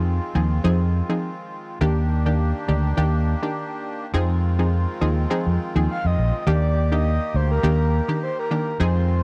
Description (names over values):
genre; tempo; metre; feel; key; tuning
afrobeats; 103 BPM; 4/4; swing 55% on 16ths; Eb major; A4 = 440 Hz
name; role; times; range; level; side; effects
analog pluck; accompaniment; 0.0-9.2 s; Eb3 to Ab4; -27 LUFS; equal; chorus
accordion; sustained chords; 0.0-9.2 s; Eb3 to G4; -34 LUFS; equal; light tremolo tuning
fingered electric bass; bass; 0.0-9.2 s; Bb1 to F2; -22 LUFS; equal; none
breathy flute-like synth lead; melody; 5.9-9.2 s; Bb4 to F5; -29 LUFS; equal; chorus
room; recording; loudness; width
little or no reverb; dry, gritty hardware recording; -22 LUFS; mono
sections
0.0-6.5 A section; 6.5-9.2 B section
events
none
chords
0.0 Fm7; 1.8 Ebmaj7; 4.1 Fm7; 6.5 Ebmaj7